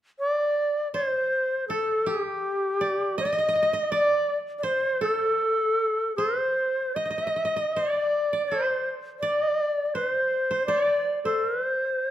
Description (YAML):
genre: japanese traditional, Japanese chamber music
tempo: 80 BPM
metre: 2/4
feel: rubato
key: C kumoi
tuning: A4 = 440 Hz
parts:
  - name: bright reedy long shakuhachi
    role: melody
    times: 0.2-12.1 s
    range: G4 to Eb5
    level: -24 LUFS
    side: equal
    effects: none
  - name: koto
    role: second line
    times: 0.9-12.1 s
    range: G4 to Eb5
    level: -32 LUFS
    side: right 3 dB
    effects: none
room: moderate recital hall reverb, RT60 1.4 s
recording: none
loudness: -23 LUFS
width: side -12 dB against mid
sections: 0.9-12.1 A section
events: none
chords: none